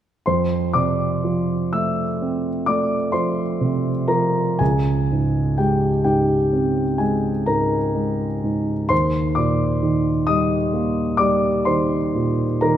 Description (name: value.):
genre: classical, impressionist solo piano.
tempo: 39-44 BPM (dotted quarters).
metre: 9/8.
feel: rubato.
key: unclear.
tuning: A4 = 441 Hz.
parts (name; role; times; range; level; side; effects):
warm concert grand piano; solo; 0.3-12.8 s; Db2 to E6; -18 LUFS; equal; none.
room: wet concert hall reverb, RT60 2.2 s.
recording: none.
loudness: -18 LUFS.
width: side -10 dB against mid.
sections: 0.3-12.8 A section.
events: none.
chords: 0.3 Fmaj7; 4.6 Db5; 8.9 Ebmaj7.